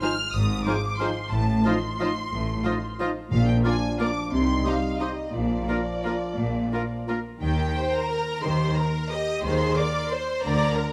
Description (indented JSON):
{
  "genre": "classical, orchestral ballroom waltz",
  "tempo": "178 BPM",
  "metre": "3/4",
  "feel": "uneven beats, rubato",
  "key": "Eb major",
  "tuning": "A4 = 440 Hz",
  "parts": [
    { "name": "rich studio violin section", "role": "melody", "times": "0.0-10.9 s", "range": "D5 to F6", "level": "-34 LUFS", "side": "equal", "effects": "none" },
    { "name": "mellow hollow flute section", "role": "second line", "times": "0.0-7.2 s", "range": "Eb6 to F6", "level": "-43 LUFS", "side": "equal", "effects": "none" },
    { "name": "rich studio violin section", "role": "second line", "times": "0.0-10.9 s", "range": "Eb4 to Eb5", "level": "-35 LUFS", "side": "equal", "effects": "none" },
    { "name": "warm clarinet", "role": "second line", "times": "0.0-7.2 s", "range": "Eb4 to G4", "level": "-36 LUFS", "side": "equal", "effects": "none" },
    { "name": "warm oboe", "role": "second line", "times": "0.0-7.2 s", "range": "Bb4 to Eb5", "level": "-39 LUFS", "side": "equal", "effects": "none" },
    { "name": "rich studio viola section", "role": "accompaniment", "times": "0.0-10.9 s", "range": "F3 to D5", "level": "-33 LUFS", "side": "equal", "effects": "none" },
    { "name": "mellow French horn section", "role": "sustained chords", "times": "0.0-7.3 s", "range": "F3 to F4", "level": "-35 LUFS", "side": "equal", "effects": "none" },
    { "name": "rich studio cello section", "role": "bass", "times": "0.3-10.7 s", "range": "Ab2 to Eb3", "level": "-31 LUFS", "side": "equal", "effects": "none" },
    { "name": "rich studio double bass section", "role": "bass", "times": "0.3-10.7 s", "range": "Ab1 to Eb2", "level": "-32 LUFS", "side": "equal", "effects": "none" },
    { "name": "timpani", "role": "percussion", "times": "3.3-3.8 s", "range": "Bb2", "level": "-31 LUFS", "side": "equal", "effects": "none" }
  ],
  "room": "moderate recital hall reverb, RT60 1.5 s",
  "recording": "close, detailed microphones",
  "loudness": "-25 LUFS",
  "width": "mono",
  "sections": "0.0-7.4 A section; 7.4-10.9 B section",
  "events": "none",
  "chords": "0.0 Fm7/Ab; 1.3 F7/A; 3.3 Bb7; 4.3 Cm; 5.3 Bb; 7.4 Eb"
}